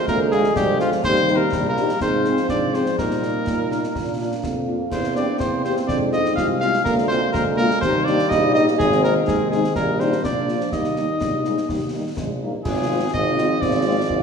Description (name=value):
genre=military-style march for wind band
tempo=124 BPM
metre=2/4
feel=straight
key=Eb major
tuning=A4 = 439 Hz
part: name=warm cornet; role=melody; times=0.0-14.2 s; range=F4 to F5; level=-23 LUFS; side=left 1 dB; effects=none
part: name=mellow euphonium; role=second line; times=0.0-14.2 s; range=F3 to F4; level=-25 LUFS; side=right 2 dB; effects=none
part: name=mellow trombone section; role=sustained chords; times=0.0-14.2 s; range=Eb3 to Eb4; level=-26 LUFS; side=right 1 dB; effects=none
part: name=clear tuba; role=bass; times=0.1-14.2 s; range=Ab1 to Bb2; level=-24 LUFS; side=right 1 dB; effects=none
part: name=concert snare drum, concert bass drum and clash cymbals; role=drums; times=0.1-14.2 s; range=none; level=-29 LUFS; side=left 2 dB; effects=none
part: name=mellow French horn section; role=accompaniment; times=0.3-13.9 s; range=F3 to Ab4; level=-28 LUFS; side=left 6 dB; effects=none
room=wet scoring stage reverb, RT60 1.6 s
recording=small room ambience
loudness=-18 LUFS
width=side -6 dB against mid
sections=0.0-12.7 A section; 12.7-14.2 B section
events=none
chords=0.0 Bb7/D; 1.0 Eb; 2.0 Fm/Ab; 3.0 Eb/Bb; 3.9 Bb; 4.9 C7/E; 5.9 Fm; 6.8 Bb7/D; 7.8 Eb; 8.8 Ab; 9.8 Eb/Bb; 10.2 Bb; 10.7 Eb; 12.7 Fm/Ab